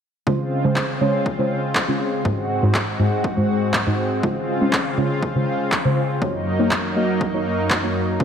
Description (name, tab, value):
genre	progressive house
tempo	121 BPM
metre	4/4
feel	straight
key	Db major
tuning	A4 = 440 Hz
part	lush unison pad	sustained chords	0.3-8.2 s	Gb2 to Gb4	-23 LUFS	equal	chorus, sidechain pumping
part	deep mellow chord stab	stabs	0.3-8.2 s	Ab2 to Eb5	-22 LUFS	equal	chorus, phaser, sidechain pumping, tape echo
part	electronic kick drum	drums	0.3-8.2 s	none	-27 LUFS	left 1 dB	overdrive, high-pass filter on kick, studio reverb
part	electronic handclaps	drums	0.8-7.8 s	none	-24 LUFS	equal	overdrive, studio reverb
room	wet plate reverb, RT60 1.8 s, digital ambience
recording	dreamy mix soaked in reverb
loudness	-18 LUFS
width	side -8 dB against mid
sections	0.3-8.2 A section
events	none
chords	0.3 Dbmaj7; 2.3 Ab7; 4.2 Dbmaj7; 6.2 Gb6